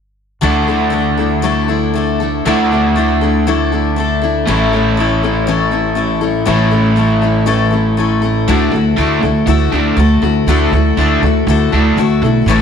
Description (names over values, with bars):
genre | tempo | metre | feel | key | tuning
rock | 120 BPM | 4/4 | straight | D major | A4 = 440 Hz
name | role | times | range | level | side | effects
picked steel-string acoustic guitar | accompaniment | 0.4-12.6 s | A2 to A4 | -16 LUFS | left 7 dB | none
crunchy overdriven guitar | riff | 0.4-12.6 s | A2 to F#4 | -15 LUFS | right 1 dB | none
upright bass | bass | 0.4-12.6 s | A1 to D2 | -17 LUFS | right 2 dB | none
room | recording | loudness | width
moderate echo chamber reverb, RT60 1.9 s, studio reverb | none | -11 LUFS | side -7 dB against mid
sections
0.4-8.5 A section; 8.5-12.6 B section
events
none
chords
0.4 Dadd9; 4.5 A; 8.5 Dadd9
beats
| 0.44 0.94 1.45 1.95 | 2.46 2.96 3.46 3.96 | 4.47 4.97 5.47 5.97 | 6.48 6.98 7.48 7.98 | 8.48 8.98 9.48 9.98 | 10.48 10.99 11.49 11.99 | 12.49